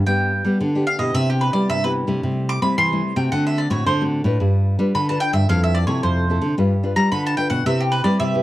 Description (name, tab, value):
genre	samba and choro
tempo	111 BPM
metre	4/4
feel	straight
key	unclear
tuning	A4 = 440 Hz
part	nylon-string guitar	accompaniment	0.0-8.4 s	G2 to B4	-24 LUFS	left 2 dB	none
part	nylon-string guitar	bass	0.0-8.4 s	F2 to C4	-20 LUFS	equal	none
part	mandolin	melody	0.1-8.4 s	G4 to D6	-22 LUFS	right 1 dB	none
room	light reverb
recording	dry, close 1970s-style studio recording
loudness	-17 LUFS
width	side -15 dB against mid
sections	0.0-8.4 A section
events	mandolin solo 0.0-8.4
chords	0.0 G; 1.2 Cmaj7; 2.2 Am7/C; 3.3 D7; 4.4 G7; 5.5 Fmaj7; 6.6 G7; 7.7 Cmaj7